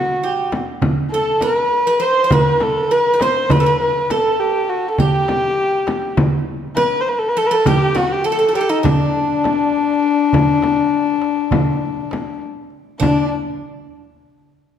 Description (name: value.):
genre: Turkish makam ensemble.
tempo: 202 BPM (eighths).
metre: 9/8.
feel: straight.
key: D makam hicaz.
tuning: A4 = 440 Hz.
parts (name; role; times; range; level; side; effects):
warm kamancheh; melody; 0.0-13.3 s; D4 to C5; -17 LUFS; left 3 dB; none.
Greek bouzouki; second line; 0.0-13.3 s; D4 to C5; -22 LUFS; right 5 dB; none.
darbuka; percussion; 0.5-13.3 s; none; -21 LUFS; right 3 dB; none.
frame drum; percussion; 0.5-13.3 s; none; -22 LUFS; left 2 dB; none.
room: wet recital hall reverb, RT60 1.7 s.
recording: dark, warm production.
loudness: -14 LUFS.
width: side -9 dB against mid.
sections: 0.0-13.0 A section; 13.0-14.8 B section.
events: none.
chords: none.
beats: 0.23 0.52 0.82 1.12 1.42 1.71 2.01 | 2.31 2.61 2.90 3.20 3.50 3.80 4.09 4.39 4.69 | 4.99 5.29 5.58 5.88 6.18 6.48 6.77 7.07 7.37 | 7.67 7.96 8.26 8.56 8.86 9.15 9.45 9.75 10.04 | 10.34 10.64 10.94 11.23 11.53 11.83 12.12 12.42 12.72 | 13.01.